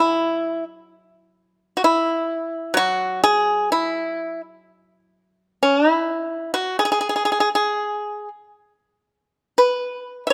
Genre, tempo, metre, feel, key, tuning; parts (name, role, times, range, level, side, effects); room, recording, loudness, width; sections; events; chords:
chinese traditional; 59-66 BPM; 4/4; rubato; A4 = 440 Hz
pipa; solo; 0.0-10.3 s; F#3 to E5; -21 LUFS; equal
light reverb; close, detailed microphones; -21 LUFS; mono
0.0-10.3 A section